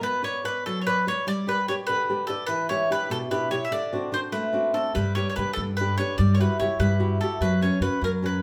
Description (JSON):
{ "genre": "italian folk, Italian serenade", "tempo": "98 BPM (dotted quarters)", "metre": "6/8", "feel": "rubato", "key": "B minor", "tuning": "A4 = 440 Hz", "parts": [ { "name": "bowl-back mandolin", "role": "melody", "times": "0.0-8.4 s", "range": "A4 to E5", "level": "-30 LUFS", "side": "equal", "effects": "none" }, { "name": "flamenco guitar", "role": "accompaniment", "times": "0.0-8.4 s", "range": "B2 to D5", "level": "-29 LUFS", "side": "equal", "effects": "none" }, { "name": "upright bass", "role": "bass", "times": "5.0-8.4 s", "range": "F#2 to G2", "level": "-27 LUFS", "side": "equal", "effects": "none" } ], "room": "wet large studio reverb, RT60 0.9 s", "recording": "band playing live in one room", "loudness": "-25 LUFS", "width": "mono", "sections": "0.0-8.4 A section", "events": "none", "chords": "0.0 Bmadd9; 1.3 G; 2.5 Em7; 3.7 D7; 5.0 G; 6.2 Emadd9/G; 7.4 F#sus4" }